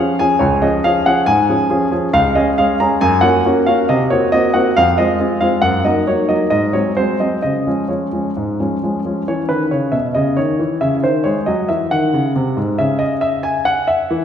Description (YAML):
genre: classical-period piano sonatina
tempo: 137 BPM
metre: 4/4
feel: straight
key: Db major, C# minor from 9.3 s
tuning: A4 = 438 Hz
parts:
  - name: warm baby grand piano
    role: solo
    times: 0.0-14.2 s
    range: Db2 to Bb5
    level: -14 LUFS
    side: equal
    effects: none
room: wet scoring stage reverb, RT60 1.5 s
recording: recorded in a church or concert hall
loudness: -13 LUFS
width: side -8 dB against mid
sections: 0.0-9.3 A section; 9.3-14.2 B section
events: none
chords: 0.4 Db; 2.2 Db5; 3.0 Gb; 3.9 Cm7b5; 4.8 Fm; 5.6 Ebm/Gb; 6.5 Ab7; 7.4 Db; 9.3 C#m; 11.0 G#7/D#; 12.8 C#m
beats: 0.00 | 0.43 0.86 1.29 1.73 | 2.16 2.59 3.02 3.46 | 3.89 4.33 4.77 5.21 | 5.65 6.08 6.53 6.97 | 7.43 7.90 8.36 8.81 | 9.27 9.71 10.15 10.59 | 11.03 11.47 11.91 12.35 | 12.79 13.23 13.66 14.10